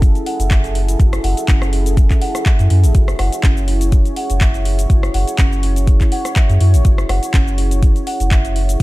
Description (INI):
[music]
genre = afro house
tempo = 123 BPM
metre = 4/4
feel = swing 55% on 16ths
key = unclear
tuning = A4 = 440 Hz
[part]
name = dark analog pad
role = sustained chords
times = 0.0-8.8 s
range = E4 to C#5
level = -27 LUFS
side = left 1 dB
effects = chorus, sidechain pumping
[part]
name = kalimba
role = arpeggios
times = 0.0-8.8 s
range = C#4 to F#5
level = -24 LUFS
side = right 2 dB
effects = sidechain pumping, digital delay
[part]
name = warm sub bass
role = bass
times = 0.0-8.8 s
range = F#1 to F#2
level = -16 LUFS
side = equal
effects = sidechain pumping
[part]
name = afro-pop drum kit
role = drums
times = 0.0-8.8 s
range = cabasa, handclaps, hi-hat, rim click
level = -25 LUFS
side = left 1 dB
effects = none
[part]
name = electronic kick drum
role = drums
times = 0.0-8.8 s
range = none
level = -13 LUFS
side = equal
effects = none
[sound]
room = digital ambience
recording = dark, warm production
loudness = -12 LUFS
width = side -19 dB against mid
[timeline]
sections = 0.0-8.8 A section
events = none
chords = 0.0 F#m9; 2.9 C#m/F#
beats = 0.02 0.51 | 1.00 1.48 1.97 2.46 | 2.95 3.44 3.92 4.41 | 4.90 5.39 5.88 6.36 | 6.85 7.34 7.83 8.31 | 8.80